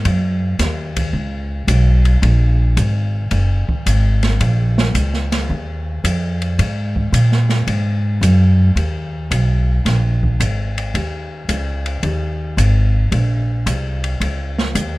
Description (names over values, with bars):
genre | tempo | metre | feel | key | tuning
jazz, small-group swing and bop | 110 BPM | 4/4 | swing 68% on 8ths | Eb minor | A4 = 439 Hz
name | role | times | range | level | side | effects
upright bass | bass | 0.0-15.0 s | Gb1 to Bb2 | -15 LUFS | equal | none
open jazz drum kit | drums | 0.1-14.9 s | hi-hat, kick drum, ride cymbal, snare drum | -24 LUFS | equal | none
room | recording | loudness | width
little or no reverb | none | -15 LUFS | side -20 dB against mid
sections
0.0-15.0 A section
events
none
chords
none